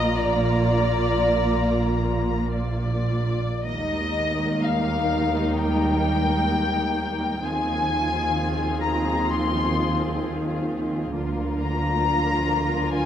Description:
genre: classical, slow romantic movement for string orchestra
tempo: 51-68 BPM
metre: 4/4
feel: rubato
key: Eb major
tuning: A4 = 440 Hz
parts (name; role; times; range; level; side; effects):
- muted studio violin section; melody; 0.0-13.1 s; D5 to C6; -27 LUFS; left 4 dB; none
- muted studio violin section; second line; 0.0-13.1 s; Eb4 to Eb5; -29 LUFS; left 1 dB; none
- muted chamber viola section; accompaniment; 0.0-13.1 s; F3 to F4; -29 LUFS; right 1 dB; none
- muted chamber cello section; bass; 0.0-13.1 s; Bb2 to Eb3; -28 LUFS; equal; none
- muted chamber double bass section; bass; 0.0-13.1 s; Bb1 to Eb2; -27 LUFS; right 2 dB; none
room: moderate scoring stage reverb, RT60 1.9 s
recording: none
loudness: -21 LUFS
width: side -10 dB against mid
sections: 0.0-3.6 A section; 3.6-13.1 B section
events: none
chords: 0.0 Bb; 3.6 Eb; 7.4 Fm7/Eb; 11.1 Bb/D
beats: 0.19 1.35 2.52 | 3.63 4.62 5.56 6.49 | 7.42 8.35 9.29 10.22 | 11.13 12.02 12.92

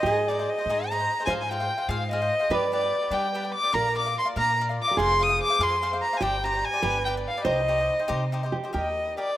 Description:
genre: mexican folk, mariachi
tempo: 97 BPM (dotted quarters)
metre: 6/8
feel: straight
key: C minor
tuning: A4 = 440 Hz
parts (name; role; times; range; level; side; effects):
- rich violin; melody; 0.0-9.4 s; D5 to Eb6; -24 LUFS; left 1 dB; none
- nylon-string guitar; second line; 0.0-9.4 s; G4 to C5; -30 LUFS; right 3 dB; none
- cavaquinho; accompaniment; 0.0-9.3 s; D4 to G5; -33 LUFS; left 3 dB; none
- rich studio violin section; sustained chords; 0.0-9.4 s; G3 to D5; -42 LUFS; left 2 dB; none
- upright bass; bass; 0.0-9.2 s; F1 to G3; -32 LUFS; equal; none
room: moderate lush hall reverb, RT60 2.7 s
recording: rough home demo mix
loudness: -23 LUFS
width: side -13 dB against mid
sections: 0.0-8.7 A section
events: none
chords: 0.1 Ab; 1.3 Fm/Ab; 2.5 G; 3.8 Bb; 5.0 Fm; 6.2 Gsus4; 6.8 G; 7.5 Cm; 8.7 Eb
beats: | 0.05 0.67 | 1.28 1.90 | 2.51 3.13 | 3.75 4.38 | 5.00 5.61 | 6.23 6.85 | 7.47 8.11 | 8.74 9.37

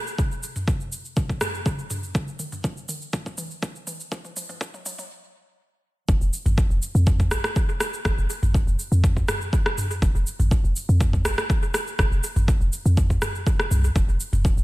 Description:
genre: afro house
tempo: 122 BPM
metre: 4/4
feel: straight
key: F minor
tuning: A4 = 439 Hz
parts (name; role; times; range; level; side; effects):
- afro-pop drum kit; drums; 0.1-14.6 s; rim click, shaker, toms; -28 LUFS; equal; overdrive, studio reverb, analog delay
- electronic kick drum; drums; 0.2-14.6 s; none; -22 LUFS; equal; overdrive, studio reverb
- warm 808-style bass; bass; 6.1-14.6 s; F1 to F2; -21 LUFS; equal; sidechain pumping
room: little or no reverb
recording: echo-heavy mix, high-pass filter, lossy compression artefacts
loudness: -21 LUFS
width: side -19 dB against mid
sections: 0.0-6.1 A section; 6.1-14.6 B section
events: build-up 0.0-6.1; drum fill 0.0-5.1; filter sweep 0.0-6.1; stop 5.1-6.1; drop 6.1-14.6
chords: none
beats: | 0.18 0.68 1.17 1.66 | 2.15 2.64 3.13 3.63 | 4.12 4.61 5.10 5.59 | 6.09 6.58 7.07 7.56 | 8.05 8.54 9.04 9.53 | 10.02 10.51 11.00 11.50 | 11.99 12.48 12.97 13.46 | 13.96 14.45

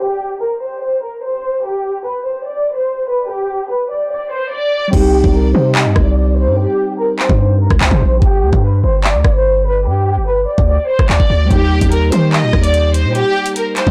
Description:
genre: hip hop, drill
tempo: 146 BPM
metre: 4/4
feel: half-time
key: C minor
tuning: A4 = 440 Hz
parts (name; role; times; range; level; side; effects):
- warm studio violin section; melody; 0.0-13.9 s; G4 to Eb5; -19 LUFS; equal; low-pass filter, digital delay
- mellow tine electric piano; accompaniment; 4.9-8.2, 11.5-13.9 s; G3 to G4; -22 LUFS; equal; low-pass filter
- hard-hitting 808-style bass; bass; 4.9-13.9 s; G1 to Eb3; -16 LUFS; equal; none
- drill drum kit; drums; 4.9-13.9 s; crash cymbal, handclaps, hi-hat, kick drum, rim click; -17 LUFS; equal; none
room: light reverb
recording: blown-out, overdriven recording, overdrive, low-pass filter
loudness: -15 LUFS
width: mono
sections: 0.0-4.9 A section; 4.9-13.9 B section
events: filter sweep 0.0-4.9, 4.9-11.5; hi-hats muted 4.9-11.5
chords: 0.0 N.C.; 4.9 Cm; 8.2 G5; 11.5 Eb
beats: | 0.00 0.41 0.82 1.23 | 1.64 2.05 2.46 2.88 | 3.29 3.70 4.11 4.52 | 4.93 5.34 5.75 6.16 | 6.58 6.99 7.40 7.81 | 8.22 8.63 9.04 9.45 | 9.86 10.27 10.68 11.10 | 11.51 11.92 12.33 12.74 | 13.15 13.56

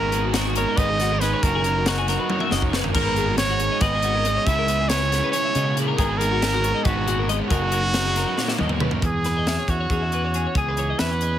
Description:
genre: math rock and midwest emo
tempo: 276 BPM (eighths)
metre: 7/8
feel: straight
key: E lydian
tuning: A4 = 438 Hz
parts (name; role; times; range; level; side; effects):
- clear trumpet; melody; 0.0-11.4 s; F#4 to E5; -24 LUFS; right 2 dB; none
- twelve-string electric guitar; accompaniment; 0.0-11.4 s; E2 to G#4; -31 LUFS; right 9 dB; none
- twelve-string electric guitar; arpeggios; 0.0-11.4 s; F#4 to F#5; -29 LUFS; left 8 dB; lush chorus
- crunchy overdriven guitar; riff; 0.0-9.0 s; C#3 to A#4; -28 LUFS; left 1 dB; none
- growling fingered electric bass; bass; 0.0-11.4 s; F#1 to C#3; -25 LUFS; equal; overdrive
- crisp fusion drum kit; drums; 0.1-11.3 s; crash cymbal, hi-hat, kick drum, snare drum, splash cymbal, toms; -26 LUFS; left 1 dB; none
room: light reverb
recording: heavily compressed radio sound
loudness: -19 LUFS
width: side -10 dB against mid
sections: 0.0-9.0 A section; 9.0-11.4 B section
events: drum fill 2.3-3.0, 8.4-9.0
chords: 0.0 G#m11; 1.4 D#m7/F#; 3.0 G#m11; 4.5 C#m7; 6.0 G#m11; 7.5 D#m7/F#; 9.0 E69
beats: 0.13 0.35 0.57 0.78 1.00 1.22 | 1.44 1.65 1.87 2.09 2.31 2.52 2.74 | 2.96 3.17 3.39 3.61 3.83 4.04 4.26 | 4.48 4.69 4.91 5.13 5.34 5.56 5.78 | 5.99 6.21 6.43 6.64 6.86 7.08 7.29 | 7.51 7.73 7.95 8.16 8.38 8.60 8.81 | 9.03 9.25 9.47 9.69 9.90 10.12 10.34 | 10.56 10.78 11.00 11.22

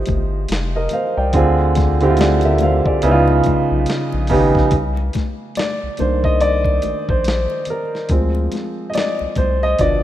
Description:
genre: R&B, neo-soul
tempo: 71 BPM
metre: 4/4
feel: swing 59% on 16ths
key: C minor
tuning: A4 = 439 Hz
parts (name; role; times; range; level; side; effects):
- warm upright piano; accompaniment; 0.0-10.0 s; B2 to G5; -17 LUFS; right 1 dB; none
- round analog bass; bass; 0.0-10.0 s; F1 to D2; -19 LUFS; left 1 dB; none
- dusty soul sampler-style drum kit; drums; 0.1-10.0 s; hi-hat, kick drum, snare drum; -23 LUFS; equal; none
- congas; percussion; 0.1-10.0 s; none; -30 LUFS; left 10 dB; none
room: moderate lush hall reverb, RT60 2.4 s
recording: rough home demo mix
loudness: -15 LUFS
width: side -12 dB against mid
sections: 0.0-4.7 A section; 4.7-10.0 B section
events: upright piano solo 4.7-10.0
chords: 0.0 Fm11; 1.3 Dm7b5; 3.0 Db9; 4.7 Cm7; 8.1 Dm7b5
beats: 0.49 | 1.33 2.18 3.02 3.87 | 4.71 5.56 6.41 7.25 | 8.10 8.94 9.79

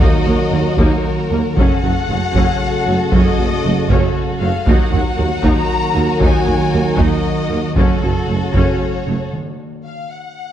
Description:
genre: cinematic, epic orchestral film score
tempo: 77 BPM (dotted quarters)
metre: 6/8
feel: straight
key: unclear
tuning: A4 = 435 Hz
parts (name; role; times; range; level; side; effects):
- warm symphonic violin section; melody; 0.0-10.5 s; A4 to Bb5; -24 LUFS; left 5 dB; none
- rich symphonic violin section; second line; 0.0-9.3 s; Gb4 to Bb4; -24 LUFS; left 2 dB; none
- rich symphonic viola section; accompaniment; 0.0-9.2 s; Gb3 to Eb4; -23 LUFS; right 1 dB; none
- mellow French horn section; sustained chords; 0.0-9.3 s; A3 to Gb4; -26 LUFS; left 4 dB; none
- warm trombone section; sustained chords; 0.0-9.3 s; Db3 to Gb3; -23 LUFS; right 4 dB; none
- mellow tuba; bass; 0.0-9.2 s; Gb1 to Eb2; -25 LUFS; right 4 dB; none
- rich symphonic double bass section; bass; 0.0-9.1 s; Gb1 to Eb2; -22 LUFS; right 3 dB; none
- warm symphonic cello section; bass; 0.0-9.1 s; Eb2 to Gb2; -22 LUFS; right 3 dB; none
- solo taiko drums; drums; 0.0-9.0 s; none; -18 LUFS; equal; none
- timpani; percussion; 9.3-10.1 s; Eb3; -30 LUFS; equal; none
room: moderate scoring stage reverb, RT60 1.6 s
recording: dark, warm production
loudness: -13 LUFS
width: side -11 dB against mid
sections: 0.0-10.5 A section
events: break 9.3-10.5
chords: 0.0 Ebm; 1.6 Gbm; 4.7 Ebm; 7.8 Gbm; 9.3 N.C.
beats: | 0.00 0.78 | 1.57 2.35 | 3.12 3.90 | 4.67 5.44 | 6.21 6.98 | 7.76 8.54 | 9.33 10.12

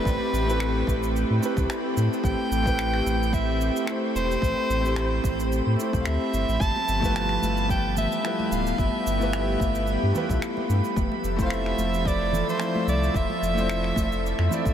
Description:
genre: sunset chillout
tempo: 110 BPM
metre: 4/4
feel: swing 55% on 16ths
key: A minor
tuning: A4 = 440 Hz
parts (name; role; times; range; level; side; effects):
- clear soprano saxophone; melody; 0.0-14.7 s; B4 to A5; -29 LUFS; equal; diffuse ambient delay
- clear concert grand piano; accompaniment; 0.0-14.7 s; A3 to D5; -30 LUFS; moving between left 5 dB and right 2 dB; auto-pan, diffuse ambient delay
- airy breathy pad; sustained chords; 0.0-14.7 s; F3 to E5; -29 LUFS; equal; chorus
- downlifter; sound effects; 0.0-2.2 s; none; barely audible; none; none
- drifting glass-harmonics texture; texture; 0.0-14.7 s; B5; -37 LUFS; right 4 dB; chorus, built-in reverb
- warm sub bass; bass; 0.1-14.7 s; D1 to A2; -26 LUFS; equal; none
- cabasa and finger snaps; drums; 0.1-14.7 s; none; -38 LUFS; equal; none
- electronic kick drum; drums; 0.1-14.7 s; none; -27 LUFS; equal; overdrive
- congas; percussion; 6.6-14.6 s; none; -34 LUFS; equal; none
room: moderate huge ambient reverb, RT60 9.3 s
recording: dreamy mix soaked in reverb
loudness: -22 LUFS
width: side -9 dB against mid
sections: 0.0-14.7 A section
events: none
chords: 0.0 Am9; 6.6 G13; 11.0 Fmaj7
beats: | 0.06 0.60 1.15 1.70 | 2.24 2.79 3.33 3.88 | 4.42 4.97 5.51 6.06 | 6.60 7.15 7.70 8.24 | 8.79 9.33 9.88 10.42 | 10.97 11.51 12.06 12.60 | 13.15 13.70 14.24

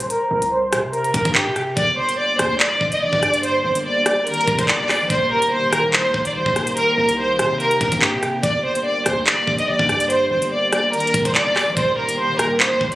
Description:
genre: hip hop, drill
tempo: 144 BPM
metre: 4/4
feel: half-time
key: G minor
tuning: A4 = 441 Hz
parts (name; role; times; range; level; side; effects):
- warm studio violin section; melody; 0.0-13.0 s; G4 to Eb5; -18 LUFS; equal; low-pass filter, digital delay
- hard-hitting 808-style bass; bass; 0.0-13.0 s; Eb1 to C3; -28 LUFS; equal; none
- drill drum kit; drums; 0.0-13.0 s; handclaps, hi-hat, kick drum, rim click; -20 LUFS; equal; none
- warm analog pad; sustained chords; 1.8-13.0 s; D3 to G4; -29 LUFS; equal; chorus
room: moderate lush hall reverb, RT60 2.1 s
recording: recorded on a phone in the room, club reverb, compression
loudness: -16 LUFS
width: side -16 dB against mid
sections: 0.0-13.0 A section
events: filter sweep on violin section 0.0-1.8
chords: 0.1 C5; 1.8 Gm; 5.1 Eb; 6.8 Cm7; 8.4 Gm; 11.8 Eb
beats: | 0.10 0.52 0.93 1.35 | 1.77 2.18 2.60 3.02 | 3.43 3.85 4.27 4.68 | 5.10 5.52 5.93 6.35 | 6.77 7.18 7.60 8.02 | 8.43 8.85 9.27 9.68 | 10.10 10.52 10.93 11.35 | 11.77 12.18 12.60

